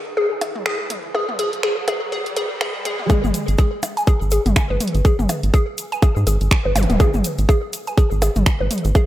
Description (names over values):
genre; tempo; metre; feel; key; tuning
minimal techno; 123 BPM; 4/4; swing 58% on 16ths; G# minor; A4 = 440 Hz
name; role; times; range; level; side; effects
riser and zap; sound effects; 0.0-3.1, 6.8-6.9 s; none; -30 LUFS; equal; none
hollow square pluck; riff; 0.2-9.0 s; G#4 to G#5; -23 LUFS; equal; chorus, sidechain pumping, tape echo
garage drum kit; drums; 0.4-9.1 s; finger snaps, hi-hat; -26 LUFS; right 2 dB; overdrive
electronic percussion blips and toms; percussion; 0.4-9.1 s; none; -26 LUFS; equal; analog delay
electronic kick drum; drums; 3.1-9.1 s; none; -15 LUFS; equal; overdrive
egg shaker; percussion; 3.1-9.1 s; none; -34 LUFS; left 3 dB; none
rubbery square bass; bass; 3.2-8.9 s; D#1 to G#2; -19 LUFS; equal; tube saturation, sidechain pumping
room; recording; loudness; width
moderate plate reverb, RT60 1.8 s, digital ambience; dreamy mix soaked in reverb, high-pass filter; -17 LUFS; side -14 dB against mid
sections
0.0-3.1 A section; 3.1-9.1 B section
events
build-up 0.0-3.1; riser 0.0-3.1; filter sweep on synth arpeggio sound 0.0-3.1; filter sweep 0.0-3.1; drop 3.1-9.1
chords
0.0 N.C.; 3.1 G#5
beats
0.17 0.66 | 1.15 1.63 2.12 2.61 | 3.10 3.58 4.07 4.56 | 5.05 5.54 6.02 6.51 | 7.00 7.49 7.97 8.46 | 8.95